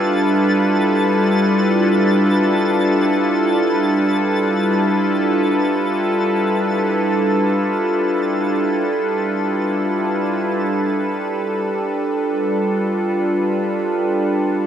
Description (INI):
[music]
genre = ambient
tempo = free time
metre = none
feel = none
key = G mixolydian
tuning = A4 = 439 Hz
[part]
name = evolving wavetable pad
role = sustained chords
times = 0.0-14.7 s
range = G3 to B4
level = -16 LUFS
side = equal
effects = chorus, built-in reverb
[part]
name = twinkling granular texture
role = texture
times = 0.0-10.6 s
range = A6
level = -33 LUFS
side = left 1 dB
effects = built-in reverb
[part]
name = pedal harmonium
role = drone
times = 10.6-14.7 s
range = G3 to G4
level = -32 LUFS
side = left 2 dB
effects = none
[sound]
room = wet plate reverb, RT60 2.5 s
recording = cassette tape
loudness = -16 LUFS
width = side -9 dB against mid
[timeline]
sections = 0.0-10.6 A section; 10.6-14.7 B section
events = fade-out on synth texture 0.0-10.6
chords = 0.0 G13; 10.6 G7